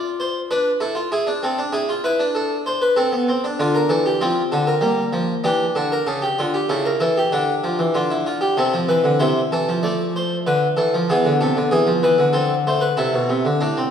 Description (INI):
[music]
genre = classical, baroque-style 3-part fugue for harpsichord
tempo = 96 BPM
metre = 4/4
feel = straight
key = D minor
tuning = A4 = 440 Hz
[part]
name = harpsichord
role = solo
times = 0.0-13.9 s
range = A2 to D5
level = -17 LUFS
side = equal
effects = none
[sound]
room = wet recital hall reverb, RT60 1.9 s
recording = heard from further back in the room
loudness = -17 LUFS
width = side -8 dB against mid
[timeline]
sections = 0.0-13.6 A section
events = none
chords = 0.0 Dm/F; 1.1 E; 2.4 Am; 3.6 Dm; 4.8 Gm; 6.1 A/C#; 7.3 Dm; 8.6 Am/C; 9.8 Dm/F; 11.1 E; 12.3 Am